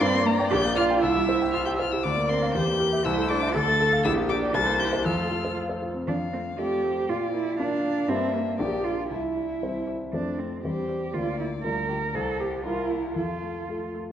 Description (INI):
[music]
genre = quick classical-period movement for piano quartet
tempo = 119 BPM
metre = 2/4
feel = straight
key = F major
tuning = A4 = 439 Hz
[part]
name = rich violin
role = melody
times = 0.0-13.9 s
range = G4 to A6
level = -30 LUFS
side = left 6 dB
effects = none
[part]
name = warm cello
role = second line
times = 0.0-13.9 s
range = Bb3 to Bb4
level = -27 LUFS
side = right 4 dB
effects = none
[part]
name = rich viola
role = accompaniment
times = 0.0-14.1 s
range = G3 to E5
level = -33 LUFS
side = right 2 dB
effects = none
[part]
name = warm concert grand piano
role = accompaniment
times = 0.0-14.1 s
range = Bb1 to C6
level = -28 LUFS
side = left 1 dB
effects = none
[sound]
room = wet concert hall reverb, RT60 1.8 s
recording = worn, warbling old tape, cassette tape, warbly pitch drift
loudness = -23 LUFS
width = side -10 dB against mid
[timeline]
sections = 0.0-6.1 A section; 6.1-14.1 A section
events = none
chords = 0.0 Gm; 0.5 Gm/Bb; 1.0 C; 2.0 Bb/D; 2.5 Edim; 3.0 Am/C; 3.5 Dm; 4.0 Gm/Bb; 4.5 C7; 5.1 F; 7.1 Bb; 8.1 Gm; 8.6 Gm/Bb; 9.1 C; 10.1 F; 10.6 C/E; 11.1 Bb/D; 11.6 Gm7/D; 12.1 C7; 13.2 F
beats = | 0.00 0.50 | 1.01 1.53 | 2.04 2.54 | 3.05 3.54 | 4.04 4.54 | 5.05 5.57 | 6.08 6.59 | 7.09 7.58 | 8.08 8.59 | 9.10 9.61 | 10.12 10.63 | 11.14 11.64 | 12.14 12.64 | 13.15 13.68